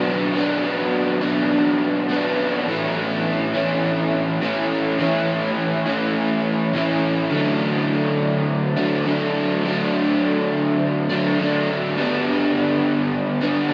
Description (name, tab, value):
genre	rock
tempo	103 BPM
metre	4/4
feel	straight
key	D major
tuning	A4 = 440 Hz
part	crunchy overdriven guitar	solo	0.0-13.7 s	G2 to E4	-21 LUFS	equal	analog chorus, analog delay
room	wet huge ambient reverb, RT60 7.6 s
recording	dreamy mix soaked in reverb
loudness	-21 LUFS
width	mono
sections	0.0-7.3 A section; 7.3-13.7 B section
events	none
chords	0.0 Bm; 2.7 A; 7.3 D; 12.0 G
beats	| 0.34 0.93 1.51 2.09 | 2.67 3.25 3.84 4.42 | 5.00 5.58 6.16 6.74 | 7.33 7.91 8.49 9.07 | 9.65 10.23 10.81 11.39 | 11.97 12.55 13.13 13.71